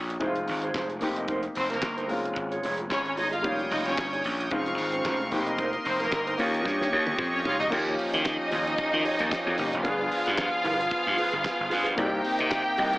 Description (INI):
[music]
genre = disco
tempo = 112 BPM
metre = 4/4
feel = swing 56% on 16ths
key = unclear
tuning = A4 = 440 Hz
[part]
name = warm grand piano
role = accompaniment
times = 0.0-13.0 s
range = G3 to Ab4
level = -32 LUFS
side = left 1 dB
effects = none
[part]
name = gritty slap bass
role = bass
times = 0.0-13.0 s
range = F1 to Eb3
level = -30 LUFS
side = equal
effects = overdrive
[part]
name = mellow electric guitar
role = accompaniment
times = 0.1-13.0 s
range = Db4 to Eb5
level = -33 LUFS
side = right 1 dB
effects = none
[part]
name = damped 70s drum kit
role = drums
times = 0.1-13.0 s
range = crash cymbal, handclaps, hi-hat, kick drum, snare drum, toms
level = -35 LUFS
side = equal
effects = none
[part]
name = clear studio string section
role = second line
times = 1.6-13.0 s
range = Bb3 to G5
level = -29 LUFS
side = equal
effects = none
[part]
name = pipe organ, strings celeste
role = sustained chords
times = 3.4-13.0 s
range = C3 to Eb6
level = -32 LUFS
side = equal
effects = none
[sound]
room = light reverb, studio reverb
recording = AM radio sound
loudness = -24 LUFS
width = side -20 dB against mid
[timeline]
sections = 0.0-7.7 A section; 7.7-13.0 B section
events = drum fill 6.7-7.7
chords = 0.2 Fm7; 1.0 Cm7/F; 2.1 Dbmaj7#11/F; 3.4 Eb7/F; 4.5 Dbmaj7/F; 5.3 Cm7/F; 6.4 Eb7; 7.7 Eb9; 9.9 G7b9; 12.0 Cm7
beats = 0.21 0.75 | 1.29 1.83 2.37 2.90 | 3.44 3.98 4.52 5.05 | 5.59 6.12 6.66 7.19 | 7.72 8.26 8.79 9.32 | 9.85 10.38 10.92 11.45 | 11.98 12.51